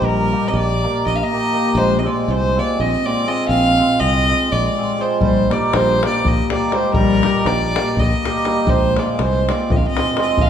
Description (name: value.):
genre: balkan folk, Balkan wedding band.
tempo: 243 BPM (eighths).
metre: 7/8.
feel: straight.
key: unclear.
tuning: A4 = 439 Hz.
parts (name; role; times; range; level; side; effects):
rich fiddle; melody; 0.0-10.5 s; Bb4 to F5; -20 LUFS; right 1 dB; none.
dark clarinet; second line; 0.0-10.5 s; G3 to D4; -22 LUFS; left 3 dB; none.
modern bright fingered electric bass; bass; 0.0-10.5 s; Bb1 to C2; -22 LUFS; equal; none.
cimbalom; accompaniment; 0.3-10.4 s; G3 to Bb4; -21 LUFS; right 3 dB; none.
davul; percussion; 5.2-10.5 s; none; -21 LUFS; left 2 dB; none.
room: wet recital hall reverb, RT60 1.7 s.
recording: minimal, uncompressed stereo recording.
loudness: -15 LUFS.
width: side -8 dB against mid.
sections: 0.0-10.5 A section.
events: none.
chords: 0.0 Eb/Bb; 1.8 Fm/Bb; 5.2 Eb/Bb; 8.7 Fm/Bb.